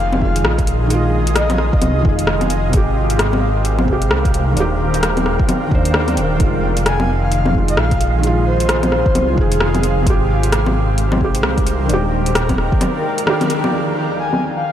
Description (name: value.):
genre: future garage.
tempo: 131 BPM.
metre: 4/4.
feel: swing 61% on 16ths.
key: F dorian.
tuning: A4 = 440 Hz.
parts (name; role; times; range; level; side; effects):
breathy flute-like synth lead; melody; 0.0-2.1, 6.9-9.3, 14.2-14.7 s; C5 to Ab5; -24 LUFS; left 2 dB; wide subtle chorus, analog delay.
felt-muted upright piano; accompaniment; 0.0-14.7 s; C3 to C5; -21 LUFS; right 1 dB; sidechain pumping, analog delay.
granular cloud pad; sustained chords; 0.0-14.7 s; Eb3 to G5; -23 LUFS; equal; built-in reverb, sidechain pumping.
dark detuned saw bass; bass; 0.0-12.7 s; Eb1 to Eb2; -18 LUFS; equal; sidechain pumping.
wind-like tuned noise texture; texture; 0.8-13.7 s; F5; -31 LUFS; right 3 dB; built-in reverb.
deep house drum kit; drums; 0.1-14.4 s; bongos, hi-hat, rim click; -21 LUFS; left 1 dB; overdrive, low-pass filter on hats, low-pass filter on perc, low-pass filter on snare, low-pass filter on room.
electronic kick drum; drums; 0.2-12.8 s; none; -18 LUFS; equal; overdrive.
room: moderate huge ambient reverb, RT60 6.3 s.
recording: dreamy mix soaked in reverb.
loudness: -14 LUFS.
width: side -10 dB against mid.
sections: 0.0-13.7 A section.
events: band accent 13.3.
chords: 0.0 Fm7; 2.7 Abmaj7; 4.6 Ebmaj7; 6.4 Fm7; 10.1 Abmaj7; 11.9 Ebmaj7; 13.7 Fm7.